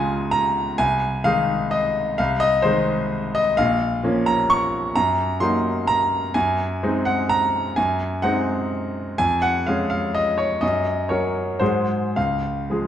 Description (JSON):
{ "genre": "classical, piano waltz", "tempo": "104-138 BPM", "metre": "3/4", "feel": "rubato", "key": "unclear", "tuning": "A4 = 440 Hz", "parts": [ { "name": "bright grand piano", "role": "solo", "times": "0.0-12.9 s", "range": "Bb1 to Db6", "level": "-19 LUFS", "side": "equal", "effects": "none" } ], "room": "moderate recital hall reverb, RT60 1.7 s", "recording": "dark, warm production, nothing above 10.6 kHz", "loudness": "-19 LUFS", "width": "side -10 dB against mid", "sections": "0.0-12.9 A section", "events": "none", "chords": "0.0 Db; 0.8 Ab/C; 3.6 Bbm; 5.0 Ebm/Gb; 6.4 Ab7/Gb; 9.2 Db/F; 10.6 Gb; 11.6 Ab7; 12.2 Db" }